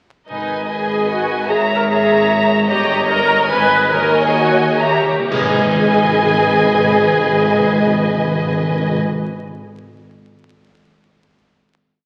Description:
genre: classical, dramatic, fast romantic movement for symphony orchestra.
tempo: 119-152 BPM.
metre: 3/4.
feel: rubato.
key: G# minor.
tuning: A4 = 441 Hz.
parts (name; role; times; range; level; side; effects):
rich chamber violin section; melody; 0.3-9.0 s; G#5 to A#5; -22 LUFS; equal; none.
warm symphonic violin section; second line; 0.3-9.0 s; B4 to E5; -22 LUFS; equal; none.
rich symphonic viola section; accompaniment; 0.3-9.0 s; D#4 to B4; -20 LUFS; equal; none.
clear tuba; bass; 0.3-9.0 s; G1 to D#2; -28 LUFS; equal; none.
rich studio double bass section; bass; 0.3-9.0 s; G1 to D#2; -30 LUFS; equal; none.
warm symphonic cello section; bass; 0.3-9.0 s; D#2 to G#2; -26 LUFS; equal; none.
timpani; percussion; 0.3-0.9, 3.9-9.1 s; G#2 to D#3; -26 LUFS; equal; none.
cymbal swell, clash cymbals and concert bass drum; percussion; 2.7-6.2 s; none; -29 LUFS; equal; none.
room: wet scoring stage reverb, RT60 1.8 s.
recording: very old 78 rpm record, vinyl crackle.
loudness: -15 LUFS.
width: mono.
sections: 0.3-5.3 A section; 5.3-8.2 final chord.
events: slowing down 2.1-5.3; timpani fill 4.8-5.3; band accent 5.3-5.8.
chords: 0.3 G#m; 1.5 A#m7b5/G#; 2.7 D#7/G; 3.5 G#m; 3.9 D#7sus4; 4.8 D#7b9; 5.3 G#m.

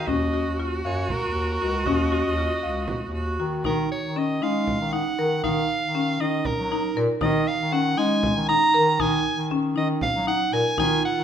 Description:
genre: contemporary instrumental, chamber music in an uneven meter.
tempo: 236 BPM (eighths).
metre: 7/8.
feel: straight.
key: Eb minor.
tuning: A4 = 441 Hz.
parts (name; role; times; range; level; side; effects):
bright soprano saxophone; melody; 0.0-11.2 s; Bb4 to Bb5; -25 LUFS; right 1 dB; none.
clear viola; second line; 0.0-3.6, 10.8-11.2 s; F4 to Gb4; -29 LUFS; right 2 dB; none.
warm bass clarinet; bass; 0.0-11.2 s; Db2 to Ab3; -28 LUFS; left 1 dB; none.
buzzing marimba with medium hard mallets; arpeggios; 0.1-11.1 s; Db4 to F5; -25 LUFS; left 1 dB; none.
frame drum; percussion; 0.1-11.0 s; none; -33 LUFS; right 2 dB; none.
room: wet recital hall reverb, RT60 1.2 s.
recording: minimal, uncompressed stereo recording.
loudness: -21 LUFS.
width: side -8 dB against mid.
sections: 0.0-3.7 A section; 3.7-11.2 B section.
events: none.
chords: 0.0 Ebm9; 3.7 Ebsus2.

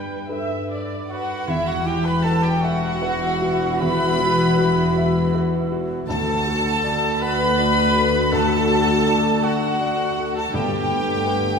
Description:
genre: cinematic, emotional film score for orchestra.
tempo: 53 BPM (dotted quarters).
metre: 6/8.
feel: uneven beats, rubato.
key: unclear.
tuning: A4 = 445 Hz.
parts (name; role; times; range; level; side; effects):
dark chamber violin section; melody; 0.0-11.6 s; B4 to B5; -25 LUFS; left 2 dB; none.
mellow cor anglais; second line; 0.0-11.6 s; E4 to G5; -28 LUFS; right 3 dB; none.
warm studio violin section; second line; 0.0-11.6 s; E4 to G5; -28 LUFS; left 2 dB; none.
dark studio viola section; accompaniment; 0.0-11.6 s; A3 to E5; -28 LUFS; left 2 dB; none.
felt-muted upright piano; accompaniment; 0.0-11.6 s; D2 to F#5; -27 LUFS; equal; none.
dark studio double bass section; bass; 0.0-11.6 s; E1 to G2; -30 LUFS; right 2 dB; none.
warm studio cello section; bass; 0.0-11.6 s; D2 to G3; -25 LUFS; left 1 dB; none.
timpani; percussion; 0.0-0.3, 10.5-11.6 s; G2; -32 LUFS; equal; none.
mellow hollow silver concert flute; second line; 1.1-11.6 s; E5 to B5; -28 LUFS; equal; none.
mellow French horn section; sustained chords; 1.5-11.6 s; B3 to A4; -27 LUFS; left 2 dB; none.
room: wet scoring stage reverb, RT60 2.0 s.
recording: recorded in a church or concert hall.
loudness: -18 LUFS.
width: side -5 dB against mid.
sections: 0.0-1.5 A section; 1.5-11.6 B section.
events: none.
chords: 0.0 Gadd9; 1.5 Esus2; 6.1 D; 10.5 Gadd9.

